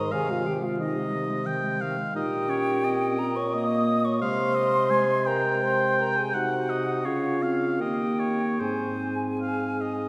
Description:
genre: classical, slow romantic movement for wind quintet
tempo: 73-90 BPM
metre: 3/4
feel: rubato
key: Ab major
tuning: A4 = 441 Hz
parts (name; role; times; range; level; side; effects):
- bright concert flute; melody; 0.0-10.1 s; Eb5 to Eb6; -34 LUFS; equal; none
- warm oboe; second line; 0.0-10.1 s; C5 to Ab5; -32 LUFS; equal; none
- mellow clarinet; accompaniment; 0.0-10.1 s; Eb3 to Eb4; -33 LUFS; equal; none
- warm French horn; accompaniment; 0.0-10.1 s; Eb4 to Eb5; -31 LUFS; equal; none
- dark bassoon; bass; 0.0-10.1 s; Ab2 to Eb3; -34 LUFS; equal; none
room: wet concert hall reverb, RT60 2.3 s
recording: none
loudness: -26 LUFS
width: mono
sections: 0.0-10.1 A section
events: none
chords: 0.1 Ab/C; 2.2 Eb7/Bb; 4.2 Ab/C; 6.3 Cdim; 7.1 Dbmaj7; 7.8 Eb; 8.6 Ab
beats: | 0.12 0.80 1.47 | 2.15 2.84 3.53 | 4.21 4.91 5.63 | 6.35 7.05 7.80 | 8.60 9.42

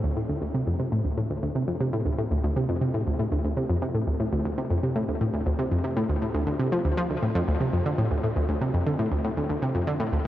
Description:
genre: ambient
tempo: 119 BPM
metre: 4/4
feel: straight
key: D minor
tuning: A4 = 442 Hz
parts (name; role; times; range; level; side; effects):
- analog pluck; solo; 0.0-10.2 s; D2 to F3; -24 LUFS; equal; chorus, ping-pong delay
room: wet huge ambient reverb, RT60 8.0 s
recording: worn, warbling old tape, cassette tape, warbly pitch drift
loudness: -24 LUFS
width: side -13 dB against mid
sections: 0.0-10.3 A section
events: none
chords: none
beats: 0.42 0.92 | 1.43 1.93 2.44 2.94 | 3.44 3.95 4.45 4.96 | 5.46 5.96 6.47 6.97 | 7.48 7.98 8.49 8.99 | 9.49 10.00

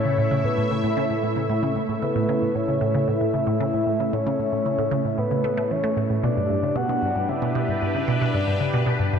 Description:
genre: ambient, sequencer-driven space music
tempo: 114 BPM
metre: 4/4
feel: straight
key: unclear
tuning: A4 = 440 Hz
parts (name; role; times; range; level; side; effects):
- soft octave-layered synth lead; melody; 0.0-8.9 s; A4 to F#5; -26 LUFS; left 2 dB; chorus, ping-pong delay
- sweeping resonant pad; sustained chords; 0.0-9.2 s; A2 to C#6; -25 LUFS; equal; chorus, phaser
- resonant blip pluck; riff; 0.1-9.2 s; G2 to A3; -24 LUFS; right 1 dB; phaser, ping-pong delay
room: wet huge ambient reverb, RT60 7.7 s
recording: in a vast, echoing space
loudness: -21 LUFS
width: side -7 dB against mid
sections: 0.0-9.2 A section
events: none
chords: 0.0 A; 6.2 G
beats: 0.45 0.97 1.50 | 2.03 2.55 3.08 3.60 | 4.13 4.66 5.18 5.71 | 6.24 6.76 7.29 7.82 | 8.34 8.87

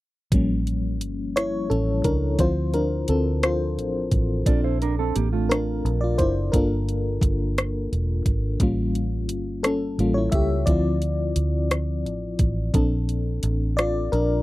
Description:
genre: slow six-eight R&B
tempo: 58 BPM (dotted quarters)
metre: 6/8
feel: straight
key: D minor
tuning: A4 = 442 Hz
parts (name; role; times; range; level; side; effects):
- FM electric piano with tremolo; accompaniment; 0.3-14.4 s; F3 to E5; -25 LUFS; left 2 dB; none
- vintage muted fingered electric bass; bass; 0.3-14.4 s; E1 to D2; -25 LUFS; equal; none
- smooth R&B drum kit; drums; 0.3-14.3 s; hi-hat, kick drum, rim click; -23 LUFS; equal; none
- mellow electric guitar; second line; 4.5-6.3 s; A3 to D5; -28 LUFS; right 9 dB; none
room: little or no reverb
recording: dry, close 1970s-style studio recording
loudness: -21 LUFS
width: side -18 dB against mid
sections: 0.3-14.4 A section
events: FM electric piano solo 0.3-14.4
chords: 0.3 A7b9b13; 2.4 Dm7; 4.5 Bbmaj7; 6.5 Gm7; 8.6 A7b9b13; 10.7 Dm7; 12.7 Bbmaj7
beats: | 0.32 1.36 | 2.39 3.43 | 4.46 5.50 | 6.53 7.56 | 8.60 9.63 | 10.67 11.70 | 12.74 13.77

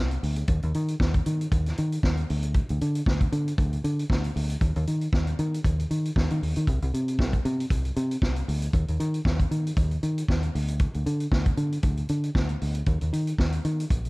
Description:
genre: disco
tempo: 116 BPM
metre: 4/4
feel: swing 56% on 16ths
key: unclear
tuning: A4 = 440 Hz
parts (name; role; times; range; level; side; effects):
- fingered electric bass; bass; 0.0-14.1 s; Bb1 to Eb3; -26 LUFS; equal; none
- vintage drum kit; drums; 0.1-14.1 s; hi-hat, kick drum, snare drum; -27 LUFS; equal; none
room: little or no reverb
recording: dark, warm production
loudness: -23 LUFS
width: side -24 dB against mid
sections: 0.0-14.1 A section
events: none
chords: none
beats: | 0.48 1.00 1.51 2.03 | 2.54 3.06 3.58 4.09 | 4.61 5.12 5.64 6.15 | 6.67 7.19 7.70 8.22 | 8.73 9.25 9.77 10.28 | 10.80 11.32 11.83 12.35 | 12.87 13.38 13.90

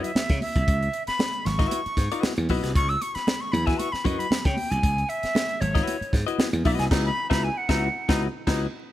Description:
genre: funk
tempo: 116 BPM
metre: 4/4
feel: straight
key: C# minor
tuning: A4 = 440 Hz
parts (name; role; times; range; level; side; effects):
- breathy bright jazz flute; melody; 0.0-8.1 s; C#5 to E6; -28 LUFS; equal; none
- clean electric guitar; accompaniment; 0.0-8.7 s; E4 to E5; -30 LUFS; left 7 dB; none
- crisp fusion drum kit; drums; 0.0-8.6 s; crash cymbal, hi-hat, kick drum, snare drum; -26 LUFS; equal; none
- congas; percussion; 0.2-6.8 s; none; -34 LUFS; right 3 dB; none
- glassy slap bass; bass; 0.3-8.7 s; G#1 to C#3; -26 LUFS; equal; none
- bright baritone saxophone; second line; 6.9-8.6 s; D#4; -34 LUFS; right 4 dB; none
room: light reverb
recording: vinyl crackle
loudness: -22 LUFS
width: side -14 dB against mid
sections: 0.0-8.9 A section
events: flute solo 0.0-8.9; band accent 6.9-8.9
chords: 0.0 C#m11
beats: 0.16 | 0.68 1.20 1.72 2.23 | 2.75 3.27 3.79 4.31 | 4.83 5.35 5.87 6.39 | 6.91 7.43 7.95 8.47

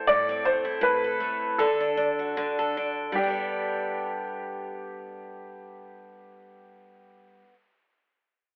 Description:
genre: pop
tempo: 73-82 BPM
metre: 4/4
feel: swing 55% on 16ths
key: G major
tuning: A4 = 440 Hz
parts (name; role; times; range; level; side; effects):
- warm upright piano; melody; 0.0-7.4 s; G4 to D5; -29 LUFS; equal; plate reverb
- picked steel-string acoustic guitar; accompaniment; 0.0-7.6 s; A2 to A4; -32 LUFS; equal; none
room: moderate studio reverb, RT60 0.7 s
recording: telephone sound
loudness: -27 LUFS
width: mono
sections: 0.0-3.2 A section; 3.2-6.4 B section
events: slowing down 0.0-3.2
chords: 0.0 Am; 1.6 D; 3.2 Gadd9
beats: | 0.07 0.81 1.57 2.35 | 3.15 3.97 4.79 5.61

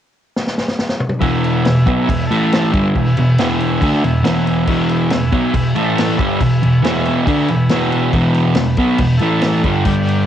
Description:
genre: garage rock duo or trio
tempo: 139 BPM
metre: 4/4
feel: straight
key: E mixolydian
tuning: A4 = 440 Hz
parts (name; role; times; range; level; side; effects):
- vintage drum kit; drums; 0.4-10.2 s; crash cymbal, kick drum, snare drum, toms; -20 LUFS; left 1 dB; cassette tape
- overdriven combo organ; sustained chords; 1.2-10.3 s; G4 to B5; -26 LUFS; equal; cassette tape
- fuzz guitar; riff; 1.2-10.3 s; E2 to D4; -14 LUFS; equal; distortion, cassette tape
room: light reverb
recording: home recording on cassette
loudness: -13 LUFS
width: side -10 dB against mid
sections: 0.0-1.2 A section; 1.2-10.3 B section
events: drum fill 0.4-1.2; transistor combo organ fill 7.3-8.1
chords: 0.0 N.C.; 1.2 E; 2.3 A5; 2.7 E; 5.8 A5; 6.2 E; 9.2 A5; 9.6 G5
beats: 0.35 0.78 | 1.21 1.65 2.08 2.51 | 2.94 3.37 3.81 4.24 | 4.67 5.10 5.54 5.97 | 6.40 6.83 7.26 7.70 | 8.13 8.56 8.99 9.43 | 9.86

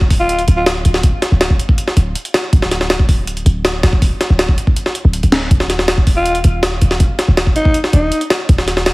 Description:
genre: drum and bass, jungle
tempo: 161 BPM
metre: 4/4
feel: straight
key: unclear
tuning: A4 = 440 Hz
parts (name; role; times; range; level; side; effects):
- warm 808-style bass; bass; 0.0-8.9 s; D1 to Eb1; -15 LUFS; equal; none
- jungle sampler-style drum kit; drums; 0.0-8.9 s; hi-hat, kick drum, snare drum; -14 LUFS; equal; studio reverb
- growling alto saxophone; melody; 0.2-0.7, 6.2-8.2 s; Eb4 to F4; -18 LUFS; equal; dub echo
room: little or no reverb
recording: heavily compressed radio sound, vinyl crackle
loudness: -11 LUFS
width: side -23 dB against mid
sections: 0.0-8.9 A section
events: none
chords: none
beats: 0.29 0.67 | 1.04 1.41 1.78 2.15 | 2.53 2.90 3.27 3.65 | 4.02 4.39 4.76 5.14 | 5.51 5.88 6.25 6.63 | 7.00 7.37 7.75 8.12 | 8.49 8.86

